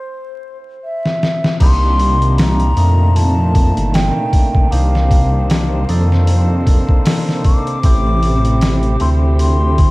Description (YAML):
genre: trip hop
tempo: 77 BPM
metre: 4/4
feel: swing 56% on 16ths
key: C dorian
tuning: A4 = 441 Hz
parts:
  - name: mellow hollow baroque flute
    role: melody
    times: 0.0-9.9 s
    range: C5 to D6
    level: -22 LUFS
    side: left 1 dB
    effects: vintage 12-bit sampler grit, tape echo
  - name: trip hop sampler-style drum kit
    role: drums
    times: 1.1-9.9 s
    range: crash cymbal, hi-hat, kick drum, snare drum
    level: -15 LUFS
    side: equal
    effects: studio reverb
  - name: percussive tonewheel organ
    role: accompaniment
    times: 1.6-9.9 s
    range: A3 to A4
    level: -22 LUFS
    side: equal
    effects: overdrive, tremolo, tape echo
  - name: rich studio string section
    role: sustained chords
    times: 1.6-9.9 s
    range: Bb2 to C5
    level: -23 LUFS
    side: right 1 dB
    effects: vintage 12-bit sampler grit
  - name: dark detuned saw bass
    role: bass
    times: 1.6-9.9 s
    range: G1 to F2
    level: -14 LUFS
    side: equal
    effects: none
room: light reverb, digital ambience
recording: echo-heavy mix, vinyl crackle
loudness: -11 LUFS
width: side -21 dB against mid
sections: 0.0-1.6 A section; 1.6-9.9 B section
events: break 0.0-1.6; drum fill 1.0-1.6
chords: 0.0 Am (rootless); 1.6 Cm7; 7.8 Am7